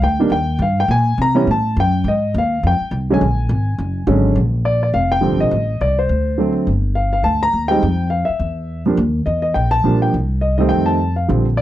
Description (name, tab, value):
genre	jazz piano trio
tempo	208 BPM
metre	4/4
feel	swing 61% on 8ths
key	Bb major from 4.4 s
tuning	A4 = 438 Hz
part	warm concert grand piano	melody	0.0-11.6 s	D3 to Bb5	-17 LUFS	equal	none
part	upright bass	bass	0.0-11.6 s	F1 to C3	-18 LUFS	equal	none
room	little or no reverb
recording	dry, close 1970s-style studio recording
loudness	-15 LUFS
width	side -13 dB against mid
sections	0.0-4.4 A section; 4.4-11.6 B section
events	none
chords	0.0 Cm (rootless); 0.9 Bb7sus2; 1.5 Gbm; 2.1 Ab6; 3.2 Bb7alt; 4.4 Bb6; 5.5 Adim; 6.1 D7; 6.7 Gm; 7.8 Fsus2; 8.4 N.C.; 9.0 Ebmaj7; 10.1 Cm; 10.7 F7